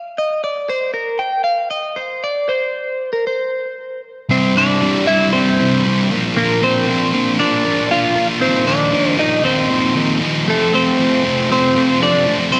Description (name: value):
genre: rock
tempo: 117 BPM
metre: 4/4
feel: straight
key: unclear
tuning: A4 = 436 Hz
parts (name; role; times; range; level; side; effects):
- electric guitar at the edge of break-up; melody; 0.2-12.6 s; A3 to G5; -19 LUFS; equal; phaser, analog delay
- sludgy distorted guitar; riff; 4.3-12.6 s; C2 to Bb4; -18 LUFS; equal; overdrive, slapback echo
room: wet lush hall reverb, RT60 2.3 s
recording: big arena sound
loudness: -16 LUFS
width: mono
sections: 0.0-4.3 A section; 4.3-12.6 B section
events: none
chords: 0.0 N.C.; 4.3 C; 6.1 Bbadd9; 8.4 Ebsus2; 10.5 F